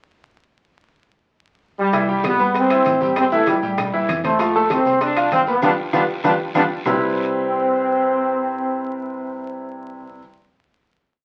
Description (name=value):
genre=latin, salsa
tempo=195 BPM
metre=4/4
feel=straight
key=C major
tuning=A4 = 440 Hz
part: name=brilliant trombone section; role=melody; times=1.8-10.1 s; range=G3 to D4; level=-22 LUFS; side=equal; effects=none
part: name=bright grand piano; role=accompaniment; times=1.9-10.2 s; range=C3 to F6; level=-24 LUFS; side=equal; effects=none
part: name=hollow-body short-scale fingered electric bass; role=bass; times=1.9-10.2 s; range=G1 to A2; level=-36 LUFS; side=equal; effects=none
part: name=bongos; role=percussion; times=1.9-6.9 s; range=none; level=-33 LUFS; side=equal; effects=none
part: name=congas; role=percussion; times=1.9-6.9 s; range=none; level=-33 LUFS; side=equal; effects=none
part: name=guiro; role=percussion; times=1.9-6.9 s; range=none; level=-42 LUFS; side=equal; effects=none
part: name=maracas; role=percussion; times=1.9-6.9 s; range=none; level=-52 LUFS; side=equal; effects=none
part: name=timbales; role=percussion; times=1.9-6.9 s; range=none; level=-31 LUFS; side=equal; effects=none
part: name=claves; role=percussion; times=2.2-6.9 s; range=none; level=-38 LUFS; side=equal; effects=none
room=wet club reverb, RT60 0.7 s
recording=very old 78 rpm record, vinyl crackle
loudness=-19 LUFS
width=mono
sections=0.7-1.9 pickup bar; 1.9-6.9 verse; 6.9-9.3 final chord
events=drum fill 5.6-6.9; band accent 5.6-6.9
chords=0.7 N.C.; 1.9 Cmaj7; 3.2 Am7; 4.4 F; 5.6 G7; 6.9 Cmaj7